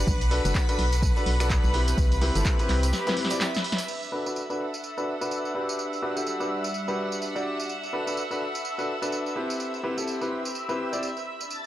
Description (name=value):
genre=piano house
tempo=126 BPM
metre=4/4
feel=swing 59% on 16ths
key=unclear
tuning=A4 = 440 Hz
part: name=string machine, violins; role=sustained chords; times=0.0-11.7 s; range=B4 to A6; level=-33 LUFS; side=equal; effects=ensemble chorus, sidechain pumping
part: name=clear grand piano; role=riff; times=0.0-11.1 s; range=C4 to D5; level=-30 LUFS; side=left 1 dB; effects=sidechain pumping, low-pass filter, tape echo
part: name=organ-like FM bass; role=bass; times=0.0-2.9 s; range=F#1 to C2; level=-24 LUFS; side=equal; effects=tube saturation, sidechain pumping
part: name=warm studio string section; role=texture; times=0.0-11.7 s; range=G3 to B5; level=-36 LUFS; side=right 1 dB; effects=sidechain pumping
part: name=electronic kick drum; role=drums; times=0.1-2.6 s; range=none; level=-25 LUFS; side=equal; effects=none
part: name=punchy analog drum machine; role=drums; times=0.1-11.6 s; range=crash cymbal, finger snaps, handclaps, hi-hat, snare drum, tambourine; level=-32 LUFS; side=right 1 dB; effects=none
part: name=tambourine and congas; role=percussion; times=0.1-3.9 s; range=none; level=-41 LUFS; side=left 1 dB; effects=none
room=digital ambience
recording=dry, gritty hardware recording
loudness=-24 LUFS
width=side -13 dB against mid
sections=0.0-3.9 A section; 3.9-11.7 B section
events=break 2.9-3.9; drum fill 2.9-3.9; filter sweep on grand piano 3.9-11.7; filter sweep on string machine 3.9-11.7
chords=0.1 Bm7; 2.0 Cmaj7; 3.9 D6; 5.5 Gmaj7; 7.7 Cmaj7